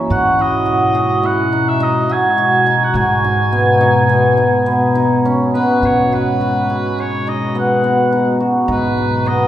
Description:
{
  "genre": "contemporary instrumental, chamber music in an uneven meter",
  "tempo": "105 BPM",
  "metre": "5/4",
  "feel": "straight",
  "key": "G# minor",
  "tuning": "A4 = 441 Hz",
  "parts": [
    { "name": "warbly tape-like pad", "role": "sustained chords", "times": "0.0-9.5 s", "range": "B2 to F#4", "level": "-20 LUFS", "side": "left 2 dB", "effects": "chorus, built-in reverb" },
    { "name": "cimbalom", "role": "arpeggios", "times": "0.0-9.5 s", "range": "B3 to G#4", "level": "-15 LUFS", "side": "equal", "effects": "none" },
    { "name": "upright bass", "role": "bass", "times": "0.0-9.5 s", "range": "G#2", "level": "-24 LUFS", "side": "right 2 dB", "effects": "none" },
    { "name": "clear oboe", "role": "melody", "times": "0.1-9.5 s", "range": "B4 to G#5", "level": "-20 LUFS", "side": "right 2 dB", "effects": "none" }
  ],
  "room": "wet concert hall reverb, RT60 1.9 s",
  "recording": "heard from further back in the room",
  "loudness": "-12 LUFS",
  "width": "side -12 dB against mid",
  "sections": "0.0-5.8 A section; 5.8-9.5 B section",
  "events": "none",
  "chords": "0.1 G#m7"
}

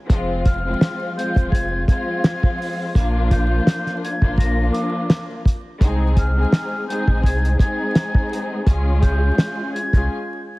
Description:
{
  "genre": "hip hop, boom-bap hip-hop",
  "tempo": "84 BPM",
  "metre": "4/4",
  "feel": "swing 55% on 16ths",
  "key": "F minor",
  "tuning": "A4 = 440 Hz",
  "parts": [
    { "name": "warm studio string section", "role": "accompaniment", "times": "0.1-10.1 s", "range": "F3 to Ab4", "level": "-24 LUFS", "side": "left 1 dB", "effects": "cassette tape, high-pass filter, low-pass filter" },
    { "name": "sub bass with octave", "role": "bass", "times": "0.1-10.1 s", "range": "Eb1 to Db2", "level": "-20 LUFS", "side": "equal", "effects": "none" },
    { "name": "cloth-damped thuddy drum kit", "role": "drums", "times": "0.1-10.1 s", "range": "hi-hat, kick drum, snare drum", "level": "-17 LUFS", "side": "equal", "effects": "none" },
    { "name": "breathy silver concert flute", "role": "melody", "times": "0.5-10.1 s", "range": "D6 to Bb6", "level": "-28 LUFS", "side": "equal", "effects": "high-pass filter, low-pass filter, digital delay" }
  ],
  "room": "small room ambience",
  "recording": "heavily compressed radio sound, multiband compression, vinyl crackle",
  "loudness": "-17 LUFS",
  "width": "side -22 dB against mid",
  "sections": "0.1-10.6 A section",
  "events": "break 10.1-10.6",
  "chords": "0.1 Fm; 3.0 Bb; 5.8 Ab; 8.7 Db"
}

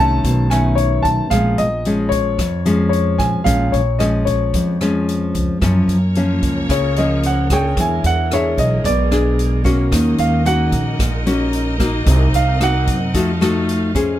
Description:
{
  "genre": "bossa nova",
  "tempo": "112 BPM",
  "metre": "4/4",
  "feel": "straight",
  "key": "Bb minor",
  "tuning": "A4 = 440 Hz",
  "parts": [
    { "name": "warm baby grand piano", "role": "melody", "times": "0.0-13.4 s", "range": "C#5 to A5", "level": "-20 LUFS", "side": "equal", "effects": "none" },
    { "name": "nylon-string guitar", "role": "accompaniment", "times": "0.0-14.2 s", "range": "F2 to Db5", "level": "-18 LUFS", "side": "left 2 dB", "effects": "none" },
    { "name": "upright bass", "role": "bass", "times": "0.0-14.2 s", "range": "Bb1 to Gb2", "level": "-19 LUFS", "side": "right 1 dB", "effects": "none" },
    { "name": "swinging big-band drum kit", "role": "drums", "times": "0.2-14.1 s", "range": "hi-hat, kick drum, rim click", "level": "-23 LUFS", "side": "equal", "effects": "none" },
    { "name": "clear studio string section", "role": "sustained chords", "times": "5.6-14.2 s", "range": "G#3 to F5", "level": "-27 LUFS", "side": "right 2 dB", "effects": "none" }
  ],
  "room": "light reverb",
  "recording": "close, detailed microphones",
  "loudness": "-14 LUFS",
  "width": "side -12 dB against mid",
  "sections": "0.0-5.6 A section; 5.6-14.2 B section",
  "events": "grand piano solo 5.6-14.2",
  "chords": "0.2 B9; 1.3 Bbm7; 5.6 Gbmaj7; 7.8 E13; 9.9 Ebm7; 12.1 Cm7b5; 13.1 F7b9"
}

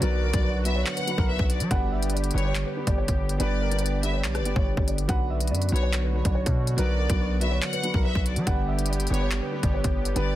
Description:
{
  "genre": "hip hop, drill",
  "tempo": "142 BPM",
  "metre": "4/4",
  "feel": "half-time",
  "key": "B minor",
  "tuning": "A4 = 440 Hz",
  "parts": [
    { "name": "dark concert grand piano", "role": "melody", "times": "0.0-10.4 s", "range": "A#4 to F#5", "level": "-33 LUFS", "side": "equal", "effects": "digital delay" },
    { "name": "rich studio violin section", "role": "second line", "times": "0.0-10.4 s", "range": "C#5 to F#5", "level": "-33 LUFS", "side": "left 2 dB", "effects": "digital delay" },
    { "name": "dark baby grand piano", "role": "accompaniment", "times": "0.0-10.4 s", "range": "F#3 to B4", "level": "-32 LUFS", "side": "right 2 dB", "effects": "none" },
    { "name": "warm analog pad", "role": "sustained chords", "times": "0.0-10.4 s", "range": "D3 to G4", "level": "-35 LUFS", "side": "equal", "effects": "chorus" },
    { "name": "distorted 808-style bass", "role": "bass", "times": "0.0-10.4 s", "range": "G1 to F#3", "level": "-26 LUFS", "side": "equal", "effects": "distortion" },
    { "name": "drill drum kit", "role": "drums", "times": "0.0-10.3 s", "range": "handclaps, hi-hat, kick drum, rim click", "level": "-27 LUFS", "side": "equal", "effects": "none" },
    { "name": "downlifter", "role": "sound effects", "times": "0.0-1.7 s", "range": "none", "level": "barely audible", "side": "none", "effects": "none" }
  ],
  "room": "little or no reverb",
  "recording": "dense, heavily limited modern master",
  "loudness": "-22 LUFS",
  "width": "side -14 dB against mid",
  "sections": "0.0-10.4 A section",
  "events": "none",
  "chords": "0.0 Bm; 1.7 G; 5.1 Bm; 8.5 G"
}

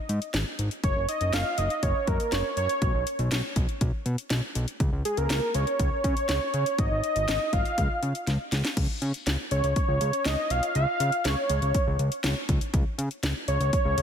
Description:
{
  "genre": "synth-pop",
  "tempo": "121 BPM",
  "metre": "4/4",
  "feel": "straight",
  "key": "unclear",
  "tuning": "A4 = 440 Hz",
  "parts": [
    { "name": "wide unison lead", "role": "melody", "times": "0.0-14.0 s", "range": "G#4 to E#5", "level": "-28 LUFS", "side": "right 1 dB", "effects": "slapback echo, digital delay" },
    { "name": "fat analog bass", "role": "bass", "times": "0.1-14.0 s", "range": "F#1 to C#3", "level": "-27 LUFS", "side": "equal", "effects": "none" },
    { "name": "house drum kit", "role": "drums", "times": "0.1-14.0 s", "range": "crash cymbal, hi-hat, kick drum, snare drum", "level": "-29 LUFS", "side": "equal", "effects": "overdrive" }
  ],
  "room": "light reverb, digital ambience",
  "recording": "none",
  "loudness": "-24 LUFS",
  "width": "side -8 dB against mid",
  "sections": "0.0-8.8 A section; 8.8-14.0 B section",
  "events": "drum fill 8.3-8.8",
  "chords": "0.0 G#5; 0.8 F#6; 2.8 Bsus2; 4.8 C#5; 6.8 G#5; 7.8 C#"
}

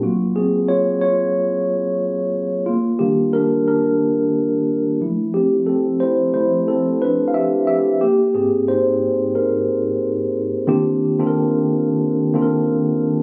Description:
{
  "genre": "R&B",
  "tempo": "90 BPM",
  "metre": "4/4",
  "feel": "swing 55% on 16ths",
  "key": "unclear",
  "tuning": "A4 = 439 Hz",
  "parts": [
    { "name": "mellow tine electric piano", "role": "solo", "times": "0.0-13.2 s", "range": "Ab2 to F5", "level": "-18 LUFS", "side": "equal", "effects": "none" }
  ],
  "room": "moderate echo chamber reverb, RT60 1.7 s, digital ambience",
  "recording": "recorded on a phone in the room, club reverb",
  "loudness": "-19 LUFS",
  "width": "mono",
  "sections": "0.0-10.7 A section; 10.7-13.2 B section",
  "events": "tine electric piano solo 0.0-10.7",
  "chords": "0.0 Gbmaj7; 2.7 Ebmaj7; 5.0 Fmaj9; 8.0 Abmaj9; 10.7 Ebmaj9"
}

